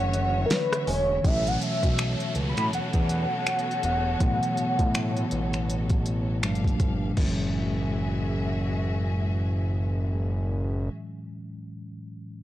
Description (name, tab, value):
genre	contemporary R&B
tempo	81 BPM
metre	4/4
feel	swing 58% on 16ths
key	F# minor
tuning	A4 = 440 Hz
part	warm velvety synth lead	melody	0.0-6.4 s	A#4 to B5	-28 LUFS	equal	chorus
part	mellow tine electric piano	accompaniment	0.0-12.4 s	A2 to D4	-31 LUFS	equal	medium stereo tremolo
part	warm studio string section	sustained chords	0.0-10.9 s	Bb2 to F5	-36 LUFS	left 2 dB	sidechain pumping
part	fat analog bass	bass	0.0-10.9 s	E1 to A2	-27 LUFS	equal	none
part	smooth R&B drum kit	drums	0.1-7.4 s	crash cymbal, finger snaps, hi-hat, kick drum, rim click, snare drum	-27 LUFS	equal	none
part	synth chime	texture	0.9-1.6 s	G#5	-43 LUFS	right 2 dB	ensemble chorus, analog delay
part	downlifter	sound effects	1.2-7.2 s	none	-38 LUFS	equal	none
room	little or no reverb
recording	dry, gritty hardware recording, cassette tape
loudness	-24 LUFS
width	side -14 dB against mid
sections	0.0-1.2 A section; 1.2-7.2 B section; 7.2-10.1 C section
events	break 0.0-1.2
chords	0.0 Dmaj9/F#; 1.2 A69; 6.4 Gm9; 7.2 F#m9